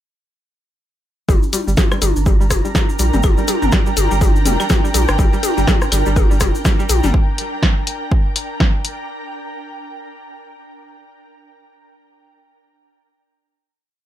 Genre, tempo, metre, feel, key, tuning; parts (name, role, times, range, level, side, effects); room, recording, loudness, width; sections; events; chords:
minimal techno; 123 BPM; 4/4; swing 59% on 16ths; G minor; A4 = 440 Hz
string-like resonator pluck; riff; 1.3-7.1 s; G3; -26 LUFS; equal; chorus, sidechain pumping, ping-pong delay
saturated sub bass; bass; 1.3-7.1 s; F1 to Bb1; -18 LUFS; equal; sidechain pumping
electronic kick drum; drums; 1.3-8.7 s; -16 LUFS; equal
minimal click drum kit; percussion; 1.3-7.1 s; claves, rim click, toms; -22 LUFS; left 5 dB
tube shaker; percussion; 1.3-7.1 s; -28 LUFS; left 3 dB
ethereal airy pad; texture; 2.0-9.1 s; D4 to Bb5; -24 LUFS; right 2 dB; ensemble chorus, built-in reverb, sidechain pumping
punchy analog drum machine; drums; 1.5-9.0 s; hi-hat, snare drum; -20 LUFS; equal
light reverb; -14 LUFS; side -12 dB against mid
1.3-9.1 build
build-up 1.3-9.1; filter sweep on synth pluck 1.3-7.1
1.3 Gm